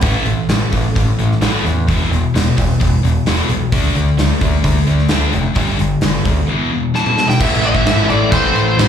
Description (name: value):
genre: hard rock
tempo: 130 BPM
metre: 4/4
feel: straight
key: unclear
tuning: A4 = 436 Hz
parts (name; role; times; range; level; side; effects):
- scooped high-gain guitar; riff; 0.0-8.9 s; E2 to D4; -19 LUFS; left 9 dB; distortion, slapback echo
- sludgy distorted guitar; riff; 0.0-8.9 s; E2 to D4; -21 LUFS; right 9 dB; overdrive, slapback echo
- growling picked electric bass; bass; 0.0-8.9 s; E1 to G#2; -17 LUFS; equal; overdrive
- gated 80s drum kit; drums; 0.0-8.9 s; crash cymbal, hi-hat, kick drum, snare drum, splash cymbal, toms; -18 LUFS; equal; none
- nasal lead guitar with a parked wah; melody; 7.0-8.9 s; C5 to A5; -17 LUFS; equal; overdrive, slapback echo
- distorted electric guitar; riff; 7.4-8.9 s; A2 to A3; -20 LUFS; left 1 dB; distortion
room: little or no reverb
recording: live gig heard through the venue's PA, club reverb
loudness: -13 LUFS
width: side -8 dB against mid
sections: 0.0-7.4 A section; 7.4-8.9 B section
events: drum fill 6.9-7.4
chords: 0.0 A5; 1.9 E5; 3.7 D5; 5.6 G5; 6.5 E5; 7.4 Am